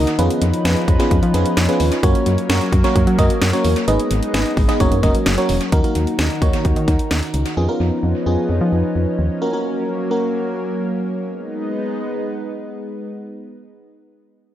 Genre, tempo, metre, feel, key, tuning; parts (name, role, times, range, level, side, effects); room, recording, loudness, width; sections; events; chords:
synth-pop; 130 BPM; 4/4; straight; G# minor; A4 = 440 Hz
FM electric piano with soft pad layer; accompaniment; 0.0-10.6 s; A#3 to D#5; -21 LUFS; right 1 dB; chorus
lush unison pad; sustained chords; 0.0-13.1 s; D#3 to B4; -23 LUFS; equal; chorus
solid FM bass; bass; 0.0-9.3 s; E1 to F#3; -19 LUFS; equal
house drum kit; drums; 0.1-7.6 s; hi-hat, kick drum, snare drum; -19 LUFS; equal; tape echo
light reverb; echo-heavy mix; -16 LUFS; side -12 dB against mid
0.0-5.7 A section; 5.7-13.1 B section
0.2 C#7/E#; 2.0 F#; 3.9 G#m; 4.8 F#; 5.7 D#m; 7.6 C#7/E#; 9.4 F#; 11.3 G#m